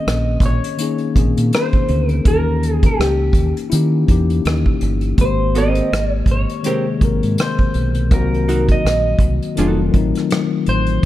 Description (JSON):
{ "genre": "R&B, neo-soul", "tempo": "82 BPM", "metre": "4/4", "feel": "swing 58% on 16ths", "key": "F minor", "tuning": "A4 = 440 Hz", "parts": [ { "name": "electric guitar through a small old amp", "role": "melody", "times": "0.0-11.1 s", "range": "G4 to Eb5", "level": "-22 LUFS", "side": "equal", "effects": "phaser, analog delay" }, { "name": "tine electric piano", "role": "accompaniment", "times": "0.0-11.1 s", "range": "C3 to Bb4", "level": "-21 LUFS", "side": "left 6 dB", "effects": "none" }, { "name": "deep dub fingered electric bass", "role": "bass", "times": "0.1-11.0 s", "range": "F1 to Eb3", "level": "-18 LUFS", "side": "right 1 dB", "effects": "none" }, { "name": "unplugged drum kit", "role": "drums", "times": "0.1-11.1 s", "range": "hi-hat, kick drum, rim click", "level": "-18 LUFS", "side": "right 1 dB", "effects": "none" }, { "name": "archtop guitar, miked and amplified", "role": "second line", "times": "5.5-9.8 s", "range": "C4 to Bb4", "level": "-23 LUFS", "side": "right 4 dB", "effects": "none" } ], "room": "light reverb, small room ambience", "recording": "dark, warm production", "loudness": "-14 LUFS", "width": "side -14 dB against mid", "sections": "0.0-11.1 A section", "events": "none", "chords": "0.0 Bbm11; 2.3 Eb7b9; 5.2 Abmaj9; 8.1 Cm7b5; 9.6 F7b9" }